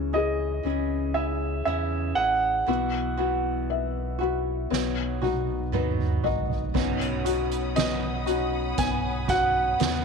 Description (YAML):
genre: pop ballad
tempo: 59 BPM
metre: 4/4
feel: straight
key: unclear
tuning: A4 = 440 Hz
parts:
  - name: felt-muted upright piano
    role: accompaniment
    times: 0.0-10.0 s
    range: B3 to E5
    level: -29 LUFS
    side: left 13 dB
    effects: none
  - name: flamenco guitar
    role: arpeggios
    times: 0.0-10.0 s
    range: B2 to G#4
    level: -32 LUFS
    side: right 11 dB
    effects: none
  - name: sub bass with octave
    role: bass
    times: 0.0-10.0 s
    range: A1 to E2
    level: -31 LUFS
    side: equal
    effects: none
  - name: clear baby grand piano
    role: melody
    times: 0.1-10.0 s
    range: D#5 to G#5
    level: -27 LUFS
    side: right 3 dB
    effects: none
  - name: soft-mallet drum kit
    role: drums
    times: 4.7-10.0 s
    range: crash cymbal, hi-hat, kick drum, snare drum, toms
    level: -30 LUFS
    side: right 5 dB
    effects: none
  - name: dark studio string section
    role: sustained chords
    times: 6.8-10.0 s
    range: C#5 to D#6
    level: -34 LUFS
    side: equal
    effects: none
room: wet spring reverb, RT60 2.1 s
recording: 1960s-style stereo with parts hard left and right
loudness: -24 LUFS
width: side -5 dB against mid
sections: 0.0-6.8 A section; 6.8-10.0 B section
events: drum fill 4.7-6.8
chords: 0.0 C#m; 2.7 Bsus4; 4.7 B; 6.8 Badd9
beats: 0.65 1.67 | 2.68 3.70 4.72 5.73 | 6.75 7.77 8.79 9.80